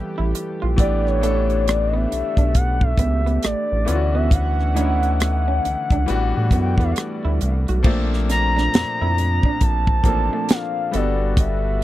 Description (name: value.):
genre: R&B, neo-soul.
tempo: 68 BPM.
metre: 4/4.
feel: swing 62% on 16ths.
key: unclear.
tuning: A4 = 440 Hz.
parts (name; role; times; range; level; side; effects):
bright concert grand piano; accompaniment; 0.0-11.8 s; E3 to A4; -27 LUFS; left 5 dB; none.
chorused pulse-width pad; sustained chords; 0.0-11.8 s; Bb2 to F#5; -31 LUFS; right 1 dB; none.
round analog bass; bass; 0.0-11.8 s; G1 to A2; -20 LUFS; equal; none.
electric guitar through a small old amp; second line; 0.2-11.2 s; A3 to F#4; -28 LUFS; right 6 dB; none.
tight funk drum kit; drums; 0.3-11.6 s; crash cymbal, hi-hat, kick drum, rim click, snare drum; -19 LUFS; equal; none.
gliding portamento lead; melody; 0.8-11.8 s; C#5 to Bb5; -24 LUFS; equal; chorus, phaser, tape echo.
room: little or no reverb.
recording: dry, close 1970s-style studio recording.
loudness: -17 LUFS.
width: side -15 dB against mid.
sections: 0.0-7.8 A section; 7.8-11.8 B section.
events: none.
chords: 0.0 Fmaj9#11; 0.8 A9sus4; 3.9 Dmaj13; 6.1 A13sus4; 7.8 Bbmaj9; 10.9 Gmaj9.